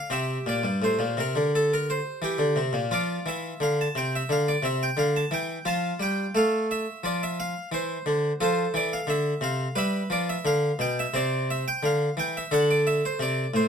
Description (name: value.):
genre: classical, baroque-style suite movement for harpsichord.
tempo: 88 BPM.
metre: 4/4.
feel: rubato.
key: F major.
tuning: A4 = 440 Hz.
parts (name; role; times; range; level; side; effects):
harpsichord; solo; 0.0-13.7 s; G2 to A5; -23 LUFS; equal; none.
room: light reverb.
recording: close, detailed microphones.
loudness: -23 LUFS.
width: side -7 dB against mid.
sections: 0.0-13.7 A section.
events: none.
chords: 0.1 C7; 2.9 F5; 5.7 F; 8.4 Dm7; 9.8 G7; 11.1 C; 12.5 D5.